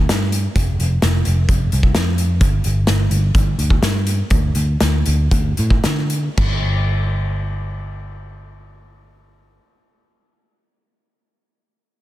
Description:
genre	rock, shoegaze and dream pop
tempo	109-129 BPM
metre	4/4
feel	straight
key	unclear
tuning	A4 = 442 Hz
part	vintage muted picked electric bass	bass	0.0-9.6 s	F1 to D3	-18 LUFS	equal	none
part	loose indie drum kit	drums	0.1-6.5 s	crash cymbal, hi-hat, kick drum, snare drum	-19 LUFS	equal	none
room	little or no reverb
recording	dense, heavily limited modern master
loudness	-15 LUFS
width	side -15 dB against mid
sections	0.0-6.4 A section; 6.4-10.8 B section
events	slowing down 2.4-6.4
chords	none

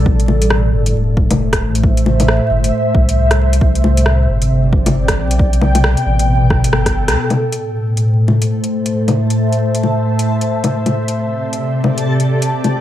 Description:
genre	future garage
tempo	135 BPM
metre	4/4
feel	swing 61% on 16ths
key	A minor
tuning	A4 = 440 Hz
part	ethereal airy pad	sustained chords	0.0-12.8 s	A2 to G5	-16 LUFS	equal	ensemble chorus, built-in reverb, vintage 12-bit sampler grit, sidechain pumping
part	warm sub bass	bass	0.0-7.2 s	E1 to D2	-15 LUFS	equal	sidechain pumping
part	electronic kick drum	drums	0.1-6.9 s	none	-16 LUFS	equal	overdrive, studio ambience
part	deep house drum kit	drums	0.2-12.7 s	bongos, hi-hat, rim click	-18 LUFS	left 2 dB	overdrive, studio ambience
part	backwards swelling texture	texture	8.4-12.8 s	A4 to A5	-26 LUFS	left 2 dB	built-in reverb, ensemble chorus
room	light reverb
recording	vinyl crackle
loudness	-12 LUFS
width	side -12 dB against mid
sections	0.0-7.2 A section; 7.2-12.8 B section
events	drum fill 6.5-7.2; band accent 7.1; filter sweep on ambient pad 7.2-12.8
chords	0.1 Am; 3.6 Csus2; 5.4 Gadd9; 7.2 Am; 10.7 Csus2

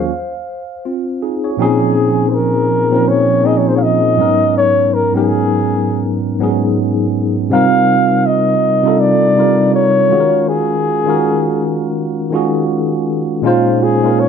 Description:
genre	R&B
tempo	81 BPM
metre	4/4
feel	swing 60% on 16ths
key	unclear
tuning	A4 = 443 Hz
part	tine electric piano	accompaniment	0.0-14.3 s	Eb2 to F5	-14 LUFS	right 1 dB	medium stereo tremolo
part	breathy flugelhorn	melody	1.6-14.3 s	F4 to F5	-14 LUFS	left 1 dB	none
room	light reverb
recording	band playing live in one room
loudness	-12 LUFS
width	side -7 dB against mid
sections	0.0-1.6 A section; 1.6-13.4 B section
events	none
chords	0.1 N.C.; 1.6 Bbm11; 4.2 Abm11; 7.5 Cm11; 10.1 Ebm11; 13.4 Bbm11

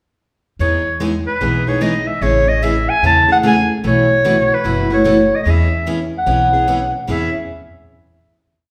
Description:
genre	acoustic string swing (jazz manouche)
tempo	148 BPM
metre	4/4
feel	swing 64% on 8ths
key	E major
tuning	A4 = 440 Hz
part	clear clarinet	melody	0.6-7.3 s	B4 to A5	-18 LUFS	equal	none
part	picked steel-string acoustic guitar	accompaniment	0.6-7.3 s	B2 to G#4	-21 LUFS	equal	none
part	upright bass	bass	0.6-7.3 s	F#1 to E2	-22 LUFS	equal	none
room	wet large studio reverb, RT60 1.3 s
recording	band playing live in one room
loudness	-15 LUFS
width	mono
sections	0.6-7.1 A section; 7.1-8.7 final chord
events	none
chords	0.6 Emaj7; 2.2 Amaj7; 3.8 B7sus4; 5.5 E69; 7.1 E6

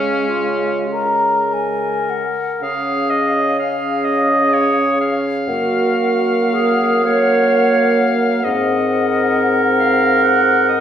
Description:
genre	classical, slow romantic movement for wind quintet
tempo	30-45 BPM (dotted quarters)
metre	6/8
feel	rubato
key	Db major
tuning	A4 = 440 Hz
part	silver concert flute	melody	0.0-10.8 s	F5 to Bb5	-22 LUFS	left 4 dB	none
part	bright oboe	second line	0.0-10.8 s	Db4 to Gb5	-21 LUFS	left 2 dB	none
part	warm French horn	accompaniment	0.0-10.8 s	Ab3 to Db4	-22 LUFS	right 1 dB	none
part	warm clarinet	accompaniment	0.0-10.8 s	Db4 to Db5	-18 LUFS	right 2 dB	none
part	dark bassoon	bass	0.0-10.8 s	Gb2 to Db3	-20 LUFS	right 1 dB	none
room	wet scoring stage reverb, RT60 1.6 s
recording	heard from further back in the room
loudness	-14 LUFS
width	side -9 dB against mid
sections	0.0-2.6 A section; 2.6-10.8 B section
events	none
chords	0.0 Db; 5.5 Gb; 8.4 Ab7

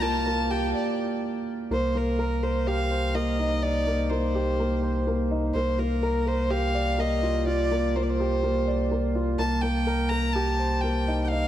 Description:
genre	piano and strings electronica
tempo	125 BPM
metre	4/4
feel	straight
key	C dorian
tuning	A4 = 439 Hz
part	dark violin	melody	0.0-11.5 s	Bb4 to Bb5	-29 LUFS	right 1 dB	none
part	dark concert grand piano	riff	0.0-11.5 s	Bb3 to D5	-27 LUFS	right 1 dB	none
part	warm sub bass	bass	0.0-11.5 s	C2	-28 LUFS	equal	none
room	moderate lush hall reverb, RT60 2.3 s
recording	none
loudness	-23 LUFS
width	side -11 dB against mid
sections	0.0-1.7 A section; 1.7-11.5 B section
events	build-up 0.0-1.7; break 0.7-1.7; drop 1.7-11.5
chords	0.0 Bb6/C; 1.7 Cm7; 5.5 Bb6/C; 9.4 Cm7

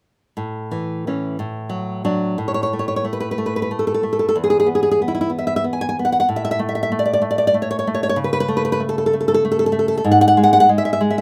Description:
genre	romantic piece for solo classical guitar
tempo	94 BPM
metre	3/4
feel	rubato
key	A major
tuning	A4 = 439 Hz
part	nylon-string guitar	solo	0.4-11.2 s	E2 to G#5	-19 LUFS	equal	none
room	light reverb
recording	rough home demo mix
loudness	-19 LUFS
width	mono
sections	0.4-2.4 A section; 2.4-11.2 B section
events	none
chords	0.4 A; 1.4 D/A; 2.4 N.C.; 4.4 E5; 6.3 N.C.; 8.2 A/C#; 10.1 N.C.

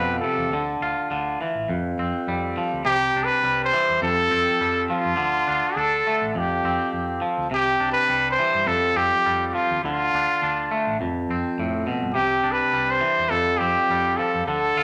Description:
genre	highlife guitar band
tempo	103 BPM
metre	4/4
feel	swing 54% on 16ths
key	unclear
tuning	A4 = 440 Hz
part	clear trumpet	melody	0.0-14.8 s	F4 to C5	-23 LUFS	equal	none
part	twangy electric guitar	accompaniment	0.0-14.8 s	F2 to G4	-27 LUFS	equal	none
part	hollow-body short-scale fingered electric bass	bass	0.0-14.8 s	A1 to G2	-37 LUFS	equal	none
room	moderate large studio reverb, RT60 0.9 s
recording	none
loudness	-22 LUFS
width	mono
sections	0.0-7.5 A section; 7.5-14.8 A section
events	none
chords	0.0 Fsus2; 0.5 Dm; 1.7 Fsus2; 2.8 Cadd9; 4.0 Fadd9; 5.2 Dm; 6.3 Fsus2; 7.5 Cadd9; 8.7 Fsus2; 9.8 Dm; 11.0 F; 12.2 Cadd9; 13.3 Fsus2

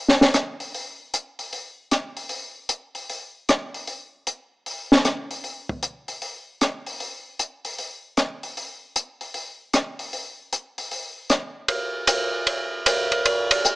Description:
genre	jazz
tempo	153 BPM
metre	4/4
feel	swing 65% on 8ths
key	none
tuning	none
part	compact cocktail drum kit	drums	0.1-13.8 s	hi-hat, kick drum, ride cymbal, rim click, snare drum	-21 LUFS	equal	none
room	light reverb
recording	small speaker sound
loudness	-23 LUFS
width	side -21 dB against mid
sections	0.0-11.7 A section; 11.7-13.8 B section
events	none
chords	none

